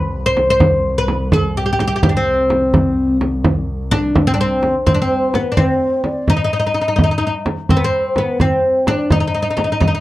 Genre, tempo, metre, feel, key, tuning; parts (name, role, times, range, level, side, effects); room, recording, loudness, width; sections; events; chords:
Persian modal ensemble; 85 BPM (dotted quarters); 6/8; straight; C avaz esfahan; A4 = 440 Hz
oud; melody; 0.0-10.0 s; B3 to C5; -16 LUFS; left 1 dB
rich double bass; drone; 0.0-4.9 s; C2; -24 LUFS; equal
frame drum; percussion; 0.4-9.9 s; -17 LUFS; right 1 dB
breathy mellow low ney; second line; 4.9-10.0 s; B4 to Eb5; -21 LUFS; equal
moderate small room reverb, RT60 0.5 s; dark, warm production; -14 LUFS; side -16 dB against mid
0.0-4.9 A section; 4.9-10.0 B section